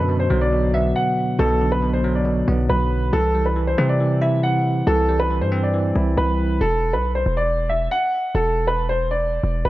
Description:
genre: hip hop, drill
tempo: 138 BPM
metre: 4/4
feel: half-time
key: B phrygian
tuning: A4 = 440 Hz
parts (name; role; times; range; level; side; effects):
- dark grand piano; melody; 0.0-9.7 s; A4 to F#5; -22 LUFS; equal; low-pass filter
- bell-like tine electric piano; accompaniment; 0.0-6.6 s; B2 to E4; -22 LUFS; right 1 dB; medium stereo tremolo, low-pass filter
- hard-hitting 808-style bass; bass; 0.0-9.7 s; E1 to C3; -21 LUFS; equal; none
room: studio reverb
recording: none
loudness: -17 LUFS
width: side -16 dB against mid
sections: 0.0-9.7 A section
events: none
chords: 0.0 Bm; 3.1 C; 6.6 E5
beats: 0.09 0.52 0.96 | 1.39 1.83 2.26 2.69 | 3.13 3.56 4.00 4.43 | 4.87 5.30 5.74 6.17 | 6.61 7.04 7.48 7.91 | 8.35 8.78 9.22 9.65

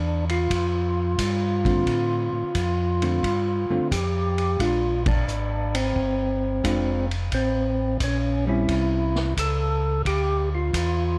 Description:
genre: soul jazz organ trio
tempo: 88 BPM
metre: 4/4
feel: swing 68% on 8ths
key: D minor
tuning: A4 = 443 Hz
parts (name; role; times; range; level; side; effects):
- percussive tonewheel organ; melody; 0.0-11.2 s; C4 to A4; -28 LUFS; equal; slow rotary speaker, overdrive
- mellow tonewheel organ; bass; 0.0-11.2 s; F1 to A2; -28 LUFS; equal; slow rotary speaker
- vintage drum kit; drums; 0.3-11.0 s; hi-hat, kick drum, ride cymbal, snare drum; -32 LUFS; equal; none
- hollow-body jazz guitar; accompaniment; 1.6-9.3 s; D3 to F4; -30 LUFS; equal; none
room: moderate club reverb, RT60 0.5 s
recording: dark, warm production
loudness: -24 LUFS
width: mono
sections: 0.0-11.2 A section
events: band accent 4.9-5.3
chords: 0.0 Dm7; 4.6 Bb7; 7.3 A7#9; 10.0 Dm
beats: 0.50 1.18 | 1.86 2.54 3.23 3.91 | 4.59 5.27 5.95 6.63 | 7.32 8.00 8.68 9.37 | 10.05 10.73

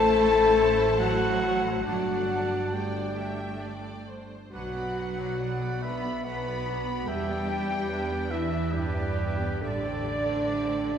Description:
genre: cinematic, emotional film score for orchestra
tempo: 70 BPM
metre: 3/4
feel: uneven beats, rubato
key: unclear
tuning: A4 = 441 Hz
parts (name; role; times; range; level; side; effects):
- clear symphonic violin section; melody; 0.0-11.0 s; G4 to B5; -38 LUFS; left 3 dB; none
- clear oboe; second line; 0.0-11.0 s; G4 to B5; -36 LUFS; right 1 dB; none
- clear symphonic violin section; second line; 0.0-11.0 s; A4 to B5; -38 LUFS; left 2 dB; none
- hollow concert flute; second line; 0.0-11.0 s; G4 to B5; -37 LUFS; equal; none
- warm clarinet; second line; 0.0-11.0 s; A4 to F#5; -39 LUFS; left 3 dB; none
- bright studio viola section; accompaniment; 0.0-11.0 s; F#3 to A4; -36 LUFS; equal; none
- clear French horn section; sustained chords; 0.0-11.0 s; G3 to B4; -28 LUFS; left 2 dB; none
- clear symphonic cello section; bass; 0.0-11.0 s; G2 to B3; -34 LUFS; right 3 dB; none
- clear symphonic double bass section; bass; 0.0-11.0 s; G1 to E2; -34 LUFS; right 1 dB; none
room: wet scoring stage reverb, RT60 1.9 s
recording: heard from further back in the room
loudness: -24 LUFS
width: side -8 dB against mid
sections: 0.0-11.0 A section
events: none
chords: 0.0 Am; 1.9 Gsus2; 4.5 Bm; 7.1 Em7; 9.6 Am7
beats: 0.16 1.00 | 1.86 2.74 3.62 | 4.52 5.40 6.25 | 7.07 7.90 8.73 | 9.61 10.47

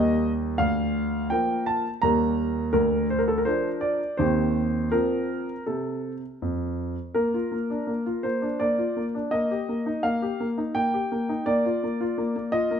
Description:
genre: classical-period piano sonatina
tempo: 84 BPM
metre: 3/4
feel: straight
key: Bb major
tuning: A4 = 440 Hz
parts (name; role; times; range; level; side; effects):
- warm concert grand piano; solo; 0.0-12.8 s; D2 to Bb5; -23 LUFS; equal; none
room: moderate recital hall reverb, RT60 1.6 s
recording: close, detailed microphones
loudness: -23 LUFS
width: side -7 dB against mid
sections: 0.0-7.2 A section; 7.2-12.8 B section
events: none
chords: 0.0 Eb; 0.6 Bb/D; 2.0 Eb; 2.7 Bb/D; 4.2 Cm/Eb; 4.9 F; 7.2 Bb; 9.3 Eb/Bb; 11.5 Bb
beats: | 0.60 1.31 2.03 | 2.75 3.47 4.20 | 4.93 5.68 6.42 | 7.16 7.89 8.61 | 9.33 10.04 10.76 | 11.47 12.19

